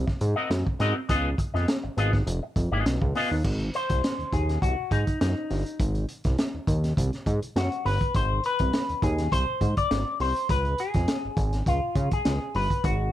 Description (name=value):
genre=funk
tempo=102 BPM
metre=4/4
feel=straight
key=Ab mixolydian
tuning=A4 = 440 Hz
part: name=fat analog bass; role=bass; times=0.0-13.1 s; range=F1 to Db3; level=-26 LUFS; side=equal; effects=none
part: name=electric guitar with an envelope filter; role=accompaniment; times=0.1-13.1 s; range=Cb4 to Eb5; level=-28 LUFS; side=left 3 dB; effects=wide subtle chorus
part: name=crunchy breakbeat drum kit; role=drums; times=0.1-13.0 s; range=crash cymbal, hi-hat, kick drum, snare drum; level=-28 LUFS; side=equal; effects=none
room=light reverb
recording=none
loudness=-23 LUFS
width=side -13 dB against mid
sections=0.0-3.4 A section; 3.4-13.1 B section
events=clean electric guitar solo 3.4-13.1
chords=0.0 Ab9; 1.1 Db9; 3.4 Ab7; 10.5 Db